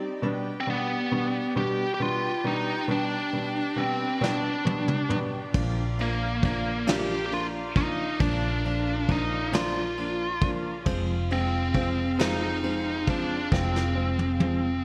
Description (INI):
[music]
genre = six-eight pop ballad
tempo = 45 BPM (dotted quarters)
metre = 6/8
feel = straight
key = unclear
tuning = A4 = 437 Hz
[part]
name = clear concert grand piano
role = accompaniment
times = 0.0-14.7 s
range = B2 to D4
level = -34 LUFS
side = equal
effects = none
[part]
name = warm studio string section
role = sustained chords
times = 0.0-14.8 s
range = C4 to G5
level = -38 LUFS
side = equal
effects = none
[part]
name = biting lead guitar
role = melody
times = 0.6-14.8 s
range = Bb3 to G4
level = -31 LUFS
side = equal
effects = overdrive, digital delay
[part]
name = vintage brush drum kit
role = drums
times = 4.2-14.6 s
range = kick drum, ride cymbal, snare drum, toms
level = -32 LUFS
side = equal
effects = gated reverb
[part]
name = hollow-body short-scale fingered electric bass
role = bass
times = 5.5-14.8 s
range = F1 to Bb1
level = -33 LUFS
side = equal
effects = none
[sound]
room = moderate lush hall reverb, RT60 2.5 s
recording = bright 1980s-style digital production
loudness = -27 LUFS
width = mono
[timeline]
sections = 0.0-14.8 A section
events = drum fill 4.2-5.5, 13.5-14.8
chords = 0.2 G/B; 5.5 Bb; 10.9 Fm